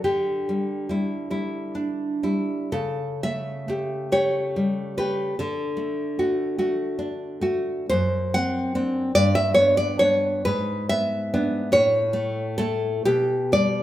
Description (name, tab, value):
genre	romantic piece for solo classical guitar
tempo	46 BPM (dotted quarters)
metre	6/8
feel	uneven beats, rubato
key	D major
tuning	A4 = 440 Hz
part	nylon-string guitar	solo	0.0-13.8 s	F#2 to F#5	-21 LUFS	equal	none
room	moderate large studio reverb, RT60 1.4 s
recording	band playing live in one room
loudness	-21 LUFS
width	side -13 dB against mid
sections	0.0-13.8 A section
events	none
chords	0.1 Em7/D; 2.7 A7/C#; 5.4 D; 7.9 D7/F#; 9.1 G; 10.5 E7/G#; 11.7 A; 13.0 G/B